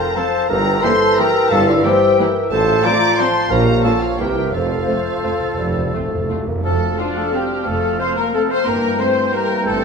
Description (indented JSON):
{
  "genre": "classical, orchestral ballroom waltz",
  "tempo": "177 BPM",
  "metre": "3/4",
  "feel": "uneven beats, rubato",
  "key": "F major",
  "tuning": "A4 = 439 Hz",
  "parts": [
    { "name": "muted studio violin section", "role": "melody", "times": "0.0-9.4 s", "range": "E5 to D6", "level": "-22 LUFS", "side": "left 4 dB", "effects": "none" },
    { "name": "mellow large flute ensemble", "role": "second line", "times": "0.0-9.8 s", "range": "C5 to C6", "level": "-25 LUFS", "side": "left 2 dB", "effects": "none" },
    { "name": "warm clarinet", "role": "second line", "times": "0.0-9.8 s", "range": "F4 to D5", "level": "-23 LUFS", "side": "equal", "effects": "none" },
    { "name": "warm oboe", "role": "second line", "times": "0.0-9.8 s", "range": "A4 to G5", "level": "-27 LUFS", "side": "right 1 dB", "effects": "none" },
    { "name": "dark bassoon", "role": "accompaniment", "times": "0.0-9.8 s", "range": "E3 to Bb3", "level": "-26 LUFS", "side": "right 1 dB", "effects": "none" },
    { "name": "mellow French horn section", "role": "sustained chords", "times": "0.0-9.8 s", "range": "F3 to C5", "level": "-21 LUFS", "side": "left 2 dB", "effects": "none" },
    { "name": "muted studio violin section", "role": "second line", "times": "0.2-9.8 s", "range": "C4 to C5", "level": "-24 LUFS", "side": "left 4 dB", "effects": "none" },
    { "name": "muted studio viola section", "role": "accompaniment", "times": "0.2-9.8 s", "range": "E3 to D4", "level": "-26 LUFS", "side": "right 3 dB", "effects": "none" },
    { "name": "muted studio cello section", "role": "bass", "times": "0.5-9.8 s", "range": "F2 to C3", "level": "-26 LUFS", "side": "right 2 dB", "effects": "none" },
    { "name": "muted studio double bass section", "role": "bass", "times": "0.5-9.8 s", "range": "F1 to C2", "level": "-28 LUFS", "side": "right 4 dB", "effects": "none" },
    { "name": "warm tuba", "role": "bass", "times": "0.5-5.9 s", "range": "F1 to C2", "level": "-26 LUFS", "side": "right 5 dB", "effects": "none" },
    { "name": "timpani", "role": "percussion", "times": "4.5-6.6 s", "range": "F2", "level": "-27 LUFS", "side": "equal", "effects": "none" }
  ],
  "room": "wet scoring stage reverb, RT60 1.9 s",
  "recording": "minimal, uncompressed stereo recording",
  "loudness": "-14 LUFS",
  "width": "side -5 dB against mid",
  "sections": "0.0-6.6 A section; 6.6-9.8 B section",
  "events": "timpani fill 4.5-6.6",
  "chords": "0.5 Edim/G; 2.5 F/A; 3.5 Bbm; 4.2 C7; 4.5 F; 8.7 Edim/G"
}